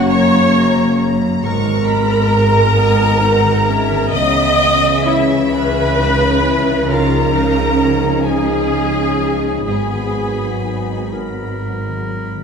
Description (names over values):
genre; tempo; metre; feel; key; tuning
cinematic; 44 BPM (dotted quarters); 6/8; uneven beats, rubato; G# minor; A4 = 438 Hz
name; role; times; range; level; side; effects
rich symphonic violin section; melody; 0.0-12.3 s; E5 to C#6; -28 LUFS; left 6 dB; none
bright flute section; second line; 0.0-11.1 s; E5 to D#6; -23 LUFS; left 2 dB; none
clear clarinet; second line; 0.0-12.4 s; G#3 to A#4; -22 LUFS; left 2 dB; none
rich symphonic violin section; second line; 0.0-11.1 s; E5 to D#6; -26 LUFS; left 2 dB; none
rich symphonic viola section; accompaniment; 0.0-11.1 s; E4 to D#5; -18 LUFS; right 1 dB; none
dark French horn section; sustained chords; 0.0-12.2 s; B2 to D#4; -22 LUFS; left 4 dB; none
concert harp; arpeggios; 0.0-12.4 s; F#2 to D#5; -25 LUFS; left 4 dB; none
rich symphonic cello section; bass; 0.0-12.3 s; F#2 to C#3; -20 LUFS; right 2 dB; none
rich symphonic double bass section; bass; 0.0-12.3 s; F#1 to C#2; -22 LUFS; right 3 dB; none
room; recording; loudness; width
wet scoring stage reverb, RT60 1.8 s; minimal, uncompressed stereo recording; -13 LUFS; side -6 dB against mid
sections
0.0-12.4 A section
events
none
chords
0.0 F#; 1.4 G#madd9; 4.1 C#m7; 6.9 C#add9; 9.7 G#m7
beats
0.08 | 1.43 2.76 | 4.13 5.53 | 6.89 8.25 | 9.66 11.14